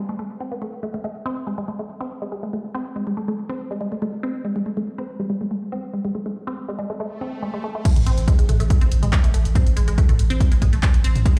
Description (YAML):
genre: driving peak-time techno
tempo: 141 BPM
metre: 4/4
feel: straight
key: A harmonic minor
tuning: A4 = 440 Hz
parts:
  - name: resonant blip pluck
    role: riff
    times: 0.1-11.4 s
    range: G#3 to B#3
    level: -29 LUFS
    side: equal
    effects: chorus, phaser, sidechain pumping, digital delay
  - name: swell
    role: sound effects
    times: 7.1-7.9 s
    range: none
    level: -38 LUFS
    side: equal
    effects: none
  - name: electronic kick drum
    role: drums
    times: 7.9-11.3 s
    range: none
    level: -19 LUFS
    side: equal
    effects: overdrive
  - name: punchy analog drum machine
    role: drums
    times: 7.9-11.4 s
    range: crash cymbal, handclaps, hi-hat, toms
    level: -29 LUFS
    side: equal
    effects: overdrive
  - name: saturated sub bass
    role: bass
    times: 8.0-11.4 s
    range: A1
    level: -22 LUFS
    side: equal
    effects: overdrive, sidechain pumping, low-pass filter
room: light reverb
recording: played on a big sound system in a bare room, large studio reverb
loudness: -22 LUFS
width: mono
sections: 0.0-7.9 A section; 7.9-11.4 B section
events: swell 7.1-7.9; drop 7.9-11.4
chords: 0.0 G#; 7.9 A5